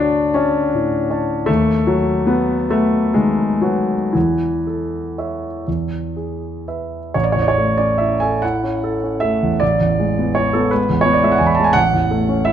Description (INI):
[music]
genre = classical, romantic nocturne for solo piano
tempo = 38-58 BPM (dotted quarters)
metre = 6/8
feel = rubato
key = A major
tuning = A4 = 440 Hz
[part]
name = warm concert grand piano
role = solo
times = 0.0-12.5 s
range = A1 to B5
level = -15 LUFS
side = equal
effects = none
[sound]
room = moderate recital hall reverb, RT60 1.6 s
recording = close, detailed microphones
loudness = -15 LUFS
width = side -9 dB against mid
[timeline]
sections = 0.0-7.1 A section; 7.1-12.5 B section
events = none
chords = 0.0 Dmaj7; 1.5 B/D#; 4.1 A/E; 5.7 E; 7.1 A; 9.6 E7/A; 11.8 A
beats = 0.35 | 1.48 2.72 | 4.14 5.66 | 7.14 8.42 | 9.61 10.71 | 11.76